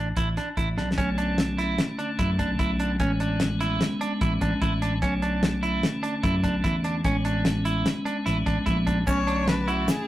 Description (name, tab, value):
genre	progressive instrumental, band music in an uneven meter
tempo	148 BPM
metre	5/4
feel	straight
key	B dorian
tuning	A4 = 441 Hz
part	semi-hollow electric guitar	arpeggios	0.0-9.9 s	C#4 to E4	-29 LUFS	right 3 dB	spring reverb
part	fretless electric bass	bass	0.0-9.8 s	A1 to F#2	-27 LUFS	equal	none
part	damped 70s drum kit	drums	0.2-10.0 s	hi-hat, kick drum, snare drum	-28 LUFS	equal	none
part	tonewheel organ	accompaniment	1.0-10.1 s	D3 to C#4	-29 LUFS	left 1 dB	overdrive, slow rotary speaker
part	clear erhu	second line	9.1-10.1 s	F#4 to C#5	-29 LUFS	left 4 dB	none
part	tube shaker	percussion	9.1-10.1 s	none	-42 LUFS	left 5 dB	none
room	moderate small room ambience, RT60 0.5 s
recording	rough rehearsal-room recording, tube saturation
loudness	-22 LUFS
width	side -14 dB against mid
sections	1.0-10.1 A section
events	drum fill 0.8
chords	0.0 A5; 1.0 Bm7; 3.0 Amaj7; 5.0 Bm7; 7.0 Amaj7; 9.1 Bm7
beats	0.17 0.57 | 0.98 1.38 1.79 2.19 2.60 | 3.00 3.41 3.81 4.22 4.62 | 5.03 5.43 5.83 6.24 6.64 | 7.05 7.46 7.86 8.26 8.67 | 9.07 9.48 9.88